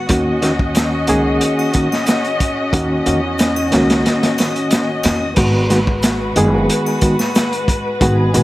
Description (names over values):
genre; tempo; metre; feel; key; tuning
trip hop; 91 BPM; 4/4; straight; G# minor; A4 = 440 Hz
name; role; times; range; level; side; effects
reed electric piano; accompaniment; 0.0-8.4 s; D#3 to G#4; -18 LUFS; equal; harmonic tremolo, tape echo
muted chamber string section; sustained chords; 0.0-8.4 s; G#3 to D#5; -20 LUFS; left 1 dB; none
upright bass; bass; 0.1-8.4 s; F#1 to E2; -21 LUFS; equal; none
crunchy breakbeat drum kit; drums; 0.1-8.4 s; crash cymbal, hi-hat, kick drum, snare drum; -17 LUFS; equal; none
egg shaker and triangle; percussion; 0.8-7.5 s; none; -32 LUFS; left 1 dB; none
room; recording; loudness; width
light reverb, studio ambience; vinyl crackle; -13 LUFS; side -17 dB against mid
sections
0.0-5.4 A section; 5.4-8.4 B section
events
none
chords
0.1 D#m7; 5.4 G#m7